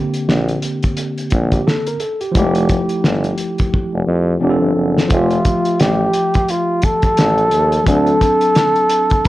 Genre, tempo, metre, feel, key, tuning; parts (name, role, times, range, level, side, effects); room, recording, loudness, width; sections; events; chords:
hip hop, jazz-hop; 87 BPM; 4/4; swing 59% on 16ths; F major; A4 = 436 Hz
tine electric piano; accompaniment; 0.0-9.3 s; D3 to E5; -19 LUFS; equal; medium stereo tremolo
cloth-damped thuddy drum kit; drums; 0.1-9.3 s; hi-hat, kick drum, snare drum; -18 LUFS; equal
warm tuba; bass; 0.3-8.1 s; F1 to F2; -18 LUFS; equal
breathy flugelhorn; melody; 5.1-9.3 s; F4 to A4; -15 LUFS; equal; analog delay
small room ambience; dry, gritty hardware recording, transformer saturation; -13 LUFS; side -16 dB against mid
0.0-5.1 A section; 5.1-9.3 B section
drum fill 3.7-5.1
0.0 Bb69; 2.3 Fmaj9; 4.4 F6; 5.1 Fmaj9; 7.9 D7